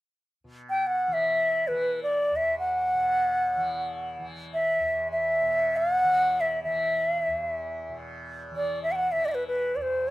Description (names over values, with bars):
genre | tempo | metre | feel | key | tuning
indian classical, Hindustani | free time | none | none | unclear | A4 = 437 Hz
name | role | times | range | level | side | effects
tanpura | drone | 0.4-10.1 s | E2 to E3 | -40 LUFS | equal | none
bright reedy bansuri | melody | 0.7-10.1 s | B4 to G5 | -24 LUFS | equal | plate reverb
room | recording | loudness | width
moderate small room ambience, RT60 0.5 s | rough home demo mix | -24 LUFS | side -17 dB against mid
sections
0.5-10.1 A section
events
none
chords
none